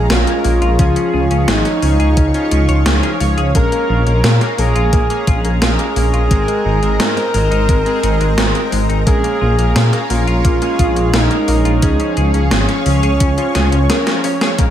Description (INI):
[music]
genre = synthwave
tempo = 87 BPM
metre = 4/4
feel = straight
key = unclear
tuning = A4 = 440 Hz
[part]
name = expressive portamento lead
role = melody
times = 0.0-14.4 s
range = Db4 to Bb4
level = -19 LUFS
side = right 1 dB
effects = chorus, ping-pong delay
[part]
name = lush unison pad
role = sustained chords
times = 0.0-14.7 s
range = Ab4 to Db6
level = -24 LUFS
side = equal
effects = chorus, phaser, sidechain pumping
[part]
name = chorused polysynth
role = stabs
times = 0.0-14.7 s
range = F3 to Db5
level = -22 LUFS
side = left 1 dB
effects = tape echo
[part]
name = dark detuned saw bass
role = bass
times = 0.0-14.7 s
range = Ab1 to Bb2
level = -15 LUFS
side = equal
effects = none
[part]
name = semi-hollow electric guitar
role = riff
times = 0.1-14.6 s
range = Ab3 to Db5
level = -26 LUFS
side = left 5 dB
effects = lush chorus, low-pass filter, ping-pong delay
[part]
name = gated 80s digital drum machine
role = drums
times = 0.1-14.7 s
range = hi-hat, snare drum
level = -19 LUFS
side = equal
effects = gated reverb, gated reverb snare, overdrive, studio reverb
[part]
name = electronic kick drum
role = drums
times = 0.8-14.7 s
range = none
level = -14 LUFS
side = equal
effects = overdrive, studio reverb
[sound]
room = light reverb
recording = none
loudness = -12 LUFS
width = side -10 dB against mid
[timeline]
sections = 0.0-14.6 A section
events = drum fill 13.6-14.6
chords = 0.0 Bbm7; 0.8 Db; 3.5 Bbm7; 6.3 Abadd9; 9.1 Bbm7; 11.8 Db